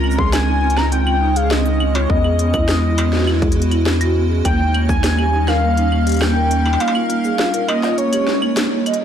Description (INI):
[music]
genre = IDM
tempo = 102 BPM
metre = 4/4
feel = straight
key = unclear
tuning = A4 = 440 Hz
[part]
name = warm velvety synth lead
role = melody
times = 0.0-8.8 s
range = Db5 to C6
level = -21 LUFS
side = left 1 dB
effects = chorus, analog delay
[part]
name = icy glass pad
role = sustained chords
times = 0.0-9.0 s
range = G3 to Eb5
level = -24 LUFS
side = equal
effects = chorus, built-in reverb
[part]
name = vibraphone with soft mallets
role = arpeggios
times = 0.0-9.0 s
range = Bb3 to Eb5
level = -21 LUFS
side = right 3 dB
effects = vintage 12-bit sampler grit, analog delay
[part]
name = warm sub bass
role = bass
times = 0.0-6.8 s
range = Db2 to E2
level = -18 LUFS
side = left 1 dB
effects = transformer saturation
[part]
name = industrial drum kit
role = drums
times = 0.0-9.0 s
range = cabasa, claves, hi-hat, snare drum, struck metal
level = -23 LUFS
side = left 1 dB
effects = overdrive
[part]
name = backwards swelling texture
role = texture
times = 0.0-9.0 s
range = Db4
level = -30 LUFS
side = right 2 dB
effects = built-in reverb
[part]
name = electronic kick drum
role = drums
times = 0.2-5.0 s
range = none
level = -20 LUFS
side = left 1 dB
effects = distortion, overdrive
[sound]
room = light reverb, digital ambience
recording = dry, gritty hardware recording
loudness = -14 LUFS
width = side -9 dB against mid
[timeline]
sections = 0.0-9.0 A section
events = band accent 8.6; drum fill 8.9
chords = 0.0 Dbmaj9; 2.1 Emaj9; 4.5 Eb7; 6.8 Bbm7; 8.0 Eb7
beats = 0.33 0.92 1.51 | 2.10 2.69 3.27 3.86 | 4.45 5.04 5.63 6.21 | 6.80 7.39 7.98 8.57